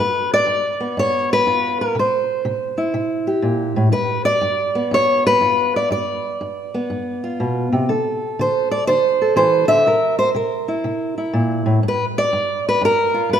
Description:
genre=acoustic country blues, solo or duo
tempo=122 BPM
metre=4/4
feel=swing 66% on 8ths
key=G mixolydian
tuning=A4 = 436 Hz
part: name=fingerpicked steel-string acoustic guitar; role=solo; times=0.0-13.4 s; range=G2 to E5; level=-16 LUFS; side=equal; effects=none
room=moderate scoring stage reverb, RT60 1.8 s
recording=recorded in a church or concert hall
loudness=-16 LUFS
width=side -8 dB against mid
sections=0.0-13.4 A section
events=none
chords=0.0 G7; 2.0 C7; 3.9 G7; 7.9 D5; 9.9 C7; 11.8 G7

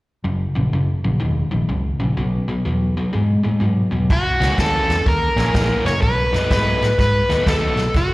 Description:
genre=electric blues shuffle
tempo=125 BPM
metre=4/4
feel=swing 65% on 8ths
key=F# mixolydian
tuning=A4 = 440 Hz
part: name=overdriven electric guitar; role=riff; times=0.2-7.8 s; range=F#2 to D#4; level=-21 LUFS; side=left 1 dB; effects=slapback echo
part: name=fingered electric bass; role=bass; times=0.2-8.1 s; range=E1 to A2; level=-21 LUFS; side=equal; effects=none
part: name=overdriven slide guitar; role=melody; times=4.1-8.1 s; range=F#4 to C#5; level=-19 LUFS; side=equal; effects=slapback echo
part: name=swinging big-band drum kit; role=drums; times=4.1-8.1 s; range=crash cymbal, kick drum, ride cymbal, snare drum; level=-21 LUFS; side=equal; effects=none
part: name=bright tonewheel organ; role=accompaniment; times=5.4-5.5 s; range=A#3 to G#4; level=-27 LUFS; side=right 4 dB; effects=chorus vibrato, slow rotary speaker
room=light reverb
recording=live gig heard through the venue's PA, recital hall reverb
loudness=-16 LUFS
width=side -19 dB against mid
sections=0.2-4.1 A section; 4.1-8.1 B section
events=none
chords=0.2 F#; 2.2 B5; 4.1 F#7; 6.0 B7

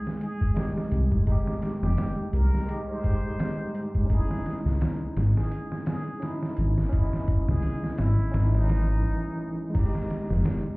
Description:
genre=trip hop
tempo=85 BPM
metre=4/4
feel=swing 57% on 16ths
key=F minor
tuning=A4 = 440 Hz
part: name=trumpet with plunger mute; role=melody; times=0.0-9.6 s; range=Eb4 to C5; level=-41 LUFS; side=equal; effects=dub echo
part: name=overdriven tine electric piano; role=accompaniment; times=0.0-10.8 s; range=Fb3 to G5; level=-32 LUFS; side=equal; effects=tremolo
part: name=flickering grainy texture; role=texture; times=0.0-9.0 s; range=Ab3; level=-40 LUFS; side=equal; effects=none
part: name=trip hop sampler-style drum kit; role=drums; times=0.1-10.6 s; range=crash cymbal, hi-hat, kick drum, snare drum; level=-28 LUFS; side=equal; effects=studio reverb
part: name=dark detuned saw bass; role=bass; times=0.9-10.4 s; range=F1 to Db2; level=-22 LUFS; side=equal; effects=none
room=light reverb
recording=heard muffled through a wall, club reverb, EQ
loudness=-24 LUFS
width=side -24 dB against mid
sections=0.0-9.7 A section; 9.7-10.8 B section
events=break 9.0-9.7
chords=0.0 Fm7 (rootless); 4.1 Dbmadd9; 9.7 Fm7

